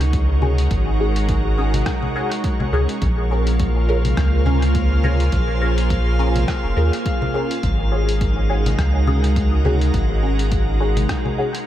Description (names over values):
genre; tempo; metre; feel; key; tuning
ambient dub; 104 BPM; 4/4; swing 57% on 16ths; unclear; A4 = 439 Hz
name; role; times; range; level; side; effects
soft additive organ-like pad; sustained chords; 0.0-11.7 s; Ab3 to Db5; -24 LUFS; right 1 dB; ensemble chorus, built-in reverb
warm sub bass; bass; 0.0-11.1 s; F1 to Eb2; -18 LUFS; equal; none
lo-fi sampler-style drum kit; drums; 0.0-11.6 s; congas, hi-hat, rim click; -28 LUFS; left 2 dB; overdrive, small room ambience, dub echo
electronic kick drum; drums; 0.1-11.2 s; none; -24 LUFS; equal; overdrive, small room ambience
filtered dub chord stab; stabs; 0.4-11.5 s; Db4 to Bb4; -26 LUFS; left 2 dB; phaser, ensemble chorus, dub echo
drifting glass-harmonics texture; texture; 3.6-11.7 s; F5; -32 LUFS; left 2 dB; chorus, built-in reverb
room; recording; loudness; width
little or no reverb; echo-heavy mix; -16 LUFS; side -12 dB against mid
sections
0.0-11.7 A section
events
none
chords
0.0 Ab7sus4; 3.0 Bbm7; 7.6 Ab7sus4